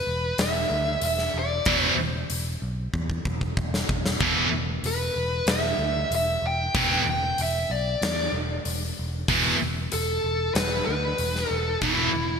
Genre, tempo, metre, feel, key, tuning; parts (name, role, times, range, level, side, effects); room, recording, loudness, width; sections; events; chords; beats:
hard rock; 94 BPM; 4/4; straight; E minor; A4 = 440 Hz
bluesy overdriven lead guitar; melody; 0.0-12.4 s; E4 to G5; -26 LUFS; equal; distortion, digital delay
picked electric bass; bass; 0.1-12.4 s; E1 to E2; -30 LUFS; equal
huge arena drum kit; drums; 0.4-12.0 s; hi-hat, kick drum, snare drum; -29 LUFS; left 1 dB
scooped high-gain guitar; riff; 1.7-12.1 s; E2 to E3; -29 LUFS; left 11 dB; distortion
scooped high-gain guitar; riff; 1.7-12.1 s; E2 to E3; -27 LUFS; right 10 dB; distortion
moderate lush hall reverb, RT60 1.9 s, studio reverb; bright 1980s-style digital production; -22 LUFS; side -6 dB against mid
0.0-12.4 A section
drum fill 2.9-4.2
0.0 E5
0.39 1.03 | 1.67 2.30 2.94 3.57 | 4.21 4.84 5.48 6.12 | 6.75 7.39 8.02 8.66 | 9.29 9.92 10.56 11.19 | 11.83